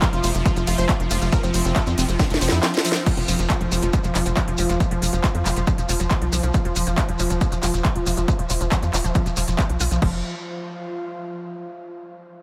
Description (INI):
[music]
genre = psychedelic trance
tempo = 138 BPM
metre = 4/4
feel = straight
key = unclear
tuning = A4 = 438 Hz
[part]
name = supersaw stab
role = melody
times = 0.0-3.0 s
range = C4 to C5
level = -32 LUFS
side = equal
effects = phaser, cassette tape, sidechain pumping, analog delay
[part]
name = evolving wavetable pad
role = sustained chords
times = 0.0-10.1 s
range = F3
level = -33 LUFS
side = equal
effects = chorus, built-in reverb, sidechain pumping
[part]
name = unison pluck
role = riff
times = 0.0-10.2 s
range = F3 to F4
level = -33 LUFS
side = equal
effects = cassette tape, sidechain pumping, analog delay
[part]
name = electronic kick drum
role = drums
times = 0.0-10.1 s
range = none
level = -23 LUFS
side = equal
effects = none
[part]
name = techno drum kit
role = drums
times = 0.0-10.1 s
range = crash cymbal, handclaps, hi-hat, ride cymbal, snare drum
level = -30 LUFS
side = equal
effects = overdrive
[part]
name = shekere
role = percussion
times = 0.0-10.0 s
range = none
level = -34 LUFS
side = equal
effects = none
[part]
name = airy breathy pad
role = texture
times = 0.0-11.7 s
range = F4 to F5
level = -36 LUFS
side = equal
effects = chorus, sidechain pumping
[part]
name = tight sequencer bass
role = bass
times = 0.1-10.2 s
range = F1 to F2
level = -26 LUFS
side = equal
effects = tube saturation
[sound]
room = moderate huge ambient reverb, RT60 8.6 s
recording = dreamy mix soaked in reverb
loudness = -21 LUFS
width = mono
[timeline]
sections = 0.0-3.1 A section; 3.1-10.0 B section; 10.0-11.8 C section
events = drop 0.0-3.1; drum fill 2.2-3.1; kick drops out 2.6-3.1; fade-out on analog synth pad 3.1-10.0; filter sweep on analog synth bass 3.1-10.0; filter sweep on synth arpeggio sound 3.1-10.0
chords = 0.0 F5